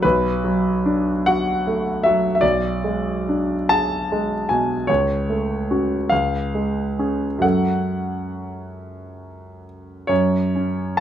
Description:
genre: classical, romantic nocturne for solo piano.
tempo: 43-54 BPM (dotted quarters).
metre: 6/8.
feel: rubato.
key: F# minor.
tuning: A4 = 442 Hz.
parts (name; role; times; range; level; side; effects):
clear concert grand piano; solo; 0.0-11.0 s; B1 to A5; -19 LUFS; equal; none.
room: light reverb.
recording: none.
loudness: -18 LUFS.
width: side -10 dB against mid.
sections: 0.0-10.1 A section.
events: none.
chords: 0.0 Bm7; 2.4 G#dim/B; 4.9 F#m/C#; 6.1 C#; 7.4 F#m; 10.1 F#5.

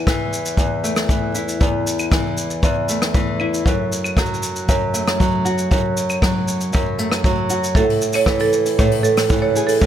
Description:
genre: folktronica.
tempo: 117 BPM.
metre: 4/4.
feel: straight.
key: unclear.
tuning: A4 = 440 Hz.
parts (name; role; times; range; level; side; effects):
nylon-string guitar; arpeggios; 0.0-9.9 s; E2 to G#4; -20 LUFS; equal; vintage 12-bit sampler grit, tape echo.
jazz brush drum kit; drums; 0.1-9.9 s; claves, hi-hat, rim click, shaker; -25 LUFS; left 1 dB; none.
kick drum; drums; 0.1-9.9 s; none; -20 LUFS; equal; none.
marimba with hard mallets; second line; 7.8-9.8 s; A4 to C#5; -17 LUFS; right 6 dB; tape echo.
room: light reverb, small room ambience.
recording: none.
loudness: -16 LUFS.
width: side -10 dB against mid.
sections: 0.0-9.9 A section.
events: none.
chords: 0.0 Esus4; 3.7 F#m; 7.8 Amaj7(no3).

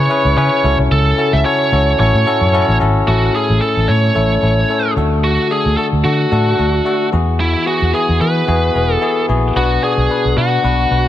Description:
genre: 1980s-style pop.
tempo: 111 BPM.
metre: 4/4.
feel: swing 55% on 16ths.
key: A major.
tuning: A4 = 440 Hz.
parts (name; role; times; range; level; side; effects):
biting lead guitar; melody; 0.0-11.1 s; E4 to E5; -16 LUFS; right 1 dB; overdrive, digital delay.
bell-like tine electric piano; accompaniment; 0.0-11.1 s; A2 to D5; -17 LUFS; left 4 dB; none.
vintage muted fingered electric bass; bass; 0.0-11.1 s; E1 to E3; -15 LUFS; equal; none.
room: light reverb, digital ambience.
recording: none.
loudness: -12 LUFS.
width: side -12 dB against mid.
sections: 0.0-3.1 A section; 3.1-11.1 B section.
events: none.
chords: 0.0 C#m7; 0.6 F#m7; 2.0 A6; 3.1 A; 5.0 D; 7.1 Eadd9; 9.6 Bm.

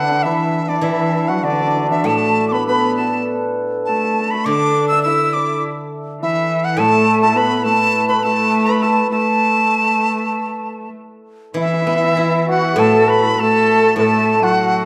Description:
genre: chinese traditional, Chinese chamber ensemble.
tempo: 101 BPM.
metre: 4/4.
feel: rubato.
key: A zhi mode.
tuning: A4 = 440 Hz.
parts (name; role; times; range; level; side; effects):
bright reedy dizi; melody; 0.0-14.9 s; D5 to E6; -20 LUFS; equal; none.
hammered dulcimer; second line; 0.0-14.9 s; D4 to E5; -23 LUFS; equal; none.
rich cello; second line; 0.0-14.9 s; D3 to E4; -23 LUFS; equal; none.
steel-string zither; accompaniment; 0.0-14.9 s; A2 to E4; -23 LUFS; equal; none.
large dizi; second line; 11.5-14.9 s; E4 to B4; -22 LUFS; equal; none.
room: wet recital hall reverb, RT60 1.4 s.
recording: none.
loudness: -16 LUFS.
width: mono.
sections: 0.0-11.6 A section; 11.6-14.9 B section.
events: none.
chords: none.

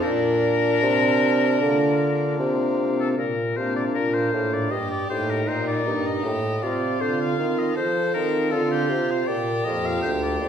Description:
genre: classical, baroque-style sonata movement with continuo.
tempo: 79 BPM.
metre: 4/4.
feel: straight.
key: Bb major.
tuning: A4 = 436 Hz.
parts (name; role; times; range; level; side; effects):
clear oboe; melody; 0.0-10.5 s; G4 to F5; -27 LUFS; left 4 dB; none.
rich violin; second line; 0.0-10.5 s; D4 to A4; -27 LUFS; right 3 dB; none.
pipe organ, principal chorus; accompaniment; 0.0-10.5 s; D2 to G4; -26 LUFS; left 1 dB; none.
warm bassoon; bass; 0.0-10.5 s; D2 to F3; -25 LUFS; equal; none.
room: wet recital hall reverb, RT60 1.5 s.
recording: heard from further back in the room.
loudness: -20 LUFS.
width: side -8 dB against mid.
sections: 0.0-3.2 A section; 3.2-10.5 B section.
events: none.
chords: 0.0 Bb; 4.7 Eb/G; 6.2 F7/A; 9.3 Bb.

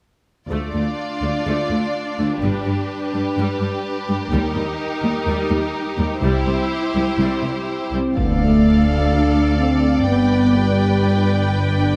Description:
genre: cinematic.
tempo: 126 BPM.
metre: 4/4.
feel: straight.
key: D dorian.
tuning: A4 = 440 Hz.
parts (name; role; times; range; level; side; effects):
warm symphonic violin section; second line; 0.5-11.9 s; F4 to D5; -28 LUFS; equal; none.
rich symphonic viola section; accompaniment; 0.5-12.0 s; G3 to B4; -27 LUFS; equal; none.
clear symphonic double bass section; bass; 0.5-12.0 s; G1 to Eb2; -25 LUFS; equal; none.
warm symphonic cello section; bass; 0.5-11.9 s; C2 to G2; -25 LUFS; equal; none.
mellow French horn section; sustained chords; 7.9-12.0 s; G3 to D4; -20 LUFS; equal; none.
warm symphonic violin section; melody; 8.2-12.0 s; F5 to G5; -29 LUFS; equal; none.
impact; sound effects; 8.2-10.1 s; none; -28 LUFS; equal; none.
room: wet scoring stage reverb, RT60 1.9 s.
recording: none.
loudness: -19 LUFS.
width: mono.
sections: 0.5-8.2 A section; 8.2-12.0 B section.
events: impact 8.2-10.1.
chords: 0.5 Dm; 2.4 G; 4.3 Eb; 6.2 C; 8.2 Dm; 10.1 G.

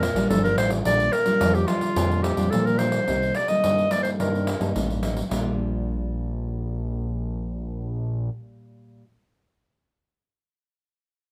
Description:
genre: samba and choro.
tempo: 108 BPM.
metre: 4/4.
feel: straight.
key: Bb major.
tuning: A4 = 440 Hz.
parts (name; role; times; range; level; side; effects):
clear clarinet; melody; 0.0-4.7 s; F4 to Eb5; -26 LUFS; equal; none.
nylon-string guitar; accompaniment; 0.0-9.1 s; G2 to F4; -29 LUFS; equal; none.
fat analog bass; bass; 0.0-8.3 s; G1 to Bb2; -29 LUFS; equal; none.
pandeiro; percussion; 0.0-5.4 s; none; -32 LUFS; equal; none.
room: moderate small room reverb, RT60 0.5 s.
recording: none.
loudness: -24 LUFS.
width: mono.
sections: 0.9-5.3 A section; 5.3-7.5 B section.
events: none.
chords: 0.0 Bb6; 3.1 Cm7; 5.3 Bb6.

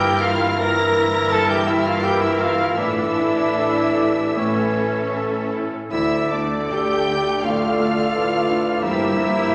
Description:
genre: classical.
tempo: 72-88 BPM.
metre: 4/4.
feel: rubato.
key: D minor.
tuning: A4 = 440 Hz.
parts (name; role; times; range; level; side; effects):
clear studio violin section; melody; 0.0-9.5 s; D6 to Bb6; -33 LUFS; equal; none.
warm grand piano; melody; 0.0-9.5 s; D2 to Bb4; -29 LUFS; equal; none.
clear clarinet; second line; 0.0-9.5 s; G4 to C#5; -32 LUFS; equal; none.
dark cor anglais; second line; 0.0-9.5 s; Bb4 to E5; -30 LUFS; equal; none.
hollow concert flute; second line; 0.0-9.5 s; D5 to Bb5; -32 LUFS; equal; none.
rich studio violin section; second line; 0.0-9.5 s; D5 to Bb5; -32 LUFS; equal; none.
clear studio viola section; accompaniment; 0.0-9.5 s; A3 to Bb4; -29 LUFS; equal; none.
mellow bassoon; accompaniment; 0.0-9.5 s; D3 to F3; -31 LUFS; equal; none.
bright trombone section; sustained chords; 0.0-9.5 s; D3 to D4; -33 LUFS; equal; none.
dark French horn section; sustained chords; 0.0-9.5 s; D4 to Bb4; -29 LUFS; equal; none.
mellow trumpet; stabs; 0.0-9.5 s; D4 to Bb4; -27 LUFS; equal; none.
rich studio cello section; bass; 0.0-9.5 s; D2 to A2; -35 LUFS; equal; none.
rich studio double bass section; bass; 0.0-9.5 s; G1 to D2; -37 LUFS; equal; none.
room: wet scoring stage reverb, RT60 1.7 s.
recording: none.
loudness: -20 LUFS.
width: mono.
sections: 0.0-9.5 A section.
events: none.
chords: 0.0 Edim/G; 2.8 Asus4; 4.4 A; 5.9 Dm; 8.8 Gm7.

